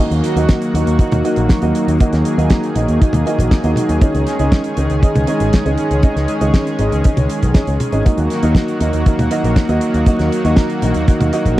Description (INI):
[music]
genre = italo disco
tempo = 119 BPM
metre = 4/4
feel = straight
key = Eb minor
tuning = A4 = 440 Hz
[part]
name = lush unison pad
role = sustained chords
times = 0.0-11.6 s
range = Eb3 to Ab4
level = -20 LUFS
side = equal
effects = chorus
[part]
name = dark concert grand piano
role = stabs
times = 0.0-11.6 s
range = Bb3 to Eb5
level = -19 LUFS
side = right 1 dB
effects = none
[part]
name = picked electric bass with an envelope filter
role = bass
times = 0.1-11.5 s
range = Ab1 to Eb2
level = -18 LUFS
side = equal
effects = none
[part]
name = damped 70s drum kit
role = drums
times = 0.1-11.6 s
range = hi-hat, snare drum, toms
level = -21 LUFS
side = right 1 dB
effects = none
[part]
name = kick drum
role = drums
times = 0.5-11.6 s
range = none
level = -12 LUFS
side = equal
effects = none
[sound]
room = studio ambience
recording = dry, close 1970s-style studio recording, vinyl crackle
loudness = -13 LUFS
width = side -16 dB against mid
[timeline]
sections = 0.0-11.6 A section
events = none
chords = 0.0 Ebm; 4.0 Dbsus2; 8.1 Ebm